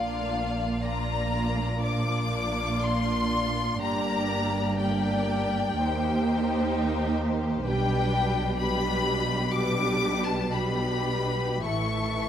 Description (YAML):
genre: classical, slow romantic movement for string orchestra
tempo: 51-66 BPM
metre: 4/4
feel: rubato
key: Bb major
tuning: A4 = 440 Hz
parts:
  - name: rich studio violin section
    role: melody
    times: 0.0-12.3 s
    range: F5 to D6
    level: -30 LUFS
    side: left 5 dB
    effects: none
  - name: warm symphonic violin section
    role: second line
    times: 0.0-12.3 s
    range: F4 to E5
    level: -33 LUFS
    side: left 3 dB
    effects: none
  - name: dark studio viola section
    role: accompaniment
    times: 0.0-12.3 s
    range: E3 to E4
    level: -30 LUFS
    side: right 2 dB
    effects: none
  - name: warm studio cello section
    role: bass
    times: 0.0-12.3 s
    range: Eb2 to B2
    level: -32 LUFS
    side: right 2 dB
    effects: none
  - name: warm studio double bass section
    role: bass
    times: 0.0-12.3 s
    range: G1 to Eb2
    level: -32 LUFS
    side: right 2 dB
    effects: none
room: moderate scoring stage reverb, RT60 1.5 s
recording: none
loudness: -24 LUFS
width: side -9 dB against mid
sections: 0.0-12.3 A section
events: none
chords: 0.0 Bb; 3.8 Gm; 5.8 Cm7/Eb; 7.7 G/B; 11.7 A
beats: 0.82 1.83 2.81 | 3.81 4.78 5.78 6.72 | 7.66 8.60 9.53 10.53 | 11.66